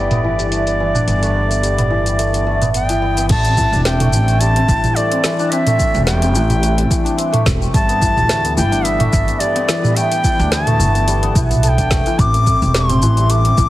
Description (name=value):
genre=organic downtempo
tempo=108 BPM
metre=4/4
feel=swing 55% on 16ths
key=A minor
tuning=A4 = 440 Hz
part: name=bright reedy bansuri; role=melody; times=0.0-13.7 s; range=D5 to D6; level=-19 LUFS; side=equal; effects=tape echo
part: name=santur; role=arpeggios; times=0.0-13.7 s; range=E3 to A4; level=-20 LUFS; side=left 1 dB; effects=digital delay
part: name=upright bass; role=bass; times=0.0-13.7 s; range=E1 to D2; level=-17 LUFS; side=equal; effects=sidechain pumping
part: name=wind-like tuned noise texture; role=texture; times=0.0-3.3 s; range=D5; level=-35 LUFS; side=right 5 dB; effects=none
part: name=afro-pop drum kit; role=drums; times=0.1-13.7 s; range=crash cymbal, hi-hat, shaker, snare drum, toms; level=-20 LUFS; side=right 1 dB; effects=overdrive
part: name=electronic kick drum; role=drums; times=3.3-13.7 s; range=none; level=-18 LUFS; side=equal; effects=overdrive
room=light reverb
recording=heavily compressed radio sound, low-pass filter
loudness=-13 LUFS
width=side -15 dB against mid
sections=0.0-3.3 A section; 3.3-13.7 B section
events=none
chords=0.0 G; 3.3 Am7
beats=0.52 | 1.07 1.63 2.18 2.74 | 3.29 3.85 4.41 4.96 | 5.52 6.07 6.63 7.18 | 7.74 8.29 8.85 9.41 | 9.96 10.52 11.07 11.63 | 12.18 12.74 13.29